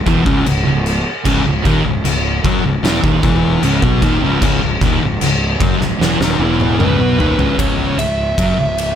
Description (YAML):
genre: stoner and doom metal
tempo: 76 BPM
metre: 4/4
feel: straight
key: C# minor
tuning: A4 = 439 Hz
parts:
  - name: thick fuzz guitar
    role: riff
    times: 0.0-8.9 s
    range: C#2 to B3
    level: -18 LUFS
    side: left 6 dB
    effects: distortion
  - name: thick fuzz guitar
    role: riff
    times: 0.0-8.9 s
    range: C#2 to B3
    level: -20 LUFS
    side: right 12 dB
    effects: distortion
  - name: fuzz fingered electric bass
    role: bass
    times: 0.0-8.9 s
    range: C#1 to B1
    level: -20 LUFS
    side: right 1 dB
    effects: overdrive, tube saturation
  - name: oversized low-tuned drum kit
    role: drums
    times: 0.1-9.0 s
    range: crash cymbal, kick drum, ride cymbal, snare drum, toms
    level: -18 LUFS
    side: equal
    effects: none
  - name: fuzz lead guitar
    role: melody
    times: 6.8-9.0 s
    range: B4 to E5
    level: -20 LUFS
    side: right 2 dB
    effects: distortion
room: light reverb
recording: none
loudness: -12 LUFS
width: side -9 dB against mid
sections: 0.0-7.6 A section; 7.6-9.0 B section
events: drum fill 6.0-7.6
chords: 0.0 C#m